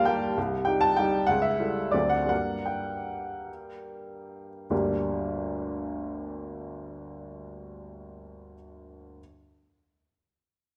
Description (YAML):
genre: classical, piano waltz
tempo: 133-205 BPM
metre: 3/4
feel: rubato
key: G minor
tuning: A4 = 439 Hz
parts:
  - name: clear upright piano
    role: solo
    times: 0.0-9.2 s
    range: G1 to A5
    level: -29 LUFS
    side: equal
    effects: none
room: wet recital hall reverb, RT60 1.4 s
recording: none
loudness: -28 LUFS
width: mono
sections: 0.0-4.7 A section; 4.7-7.1 B section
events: slowing down 1.8-4.7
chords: 0.4 Cm; 1.3 A7/C#; 1.9 D7; 2.3 Gm